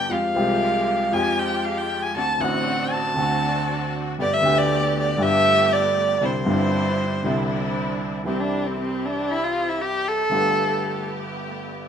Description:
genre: tango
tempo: 118 BPM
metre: 4/4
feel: rubato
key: C major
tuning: A4 = 438 Hz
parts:
  - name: warm violin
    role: second line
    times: 0.0-11.1 s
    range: C4 to A5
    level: -22 LUFS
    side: equal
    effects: none
  - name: warm upright piano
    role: accompaniment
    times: 0.0-11.9 s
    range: G1 to G4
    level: -24 LUFS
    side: equal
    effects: none
  - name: bright symphonic string section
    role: stabs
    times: 0.0-11.9 s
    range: Ab3 to G4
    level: -30 LUFS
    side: right 1 dB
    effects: none
room: moderate large studio reverb, RT60 1.1 s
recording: minimal, uncompressed stereo recording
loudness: -20 LUFS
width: side -8 dB against mid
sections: 0.0-8.3 A section; 8.3-11.9 A section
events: violin solo 0.0-8.3, 8.3-11.9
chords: 0.1 Fmadd9; 2.1 D7; 4.2 Gadd9; 6.2 Cadd9; 8.3 C; 10.3 Gadd9

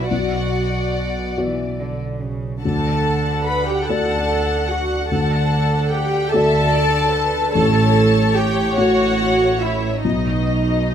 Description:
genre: cinematic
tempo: 48 BPM (dotted quarters)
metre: 6/8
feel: uneven beats, rubato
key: unclear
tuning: A4 = 440 Hz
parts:
  - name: dark studio violin section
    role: melody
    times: 0.0-10.9 s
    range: B4 to F#5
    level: -27 LUFS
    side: left 4 dB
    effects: none
  - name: warm studio violin section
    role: second line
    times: 0.0-10.9 s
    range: D#5 to B5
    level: -24 LUFS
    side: left 4 dB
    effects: none
  - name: felt-muted upright piano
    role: accompaniment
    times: 0.0-10.9 s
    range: A1 to D5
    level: -24 LUFS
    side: left 2 dB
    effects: none
  - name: warm studio viola section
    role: accompaniment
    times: 0.0-10.9 s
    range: D#4 to B4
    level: -21 LUFS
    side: right 1 dB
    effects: none
  - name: warm studio cello section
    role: bass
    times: 0.1-10.9 s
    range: A2 to E3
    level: -24 LUFS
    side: right 2 dB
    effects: none
  - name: warm studio double bass section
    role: bass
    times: 0.1-10.9 s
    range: A1 to D2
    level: -25 LUFS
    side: right 3 dB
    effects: none
room: light reverb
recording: close, detailed microphones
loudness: -16 LUFS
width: side -9 dB against mid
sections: 0.0-10.9 A section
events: none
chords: 0.0 Bm; 2.6 D; 7.5 A; 10.0 B

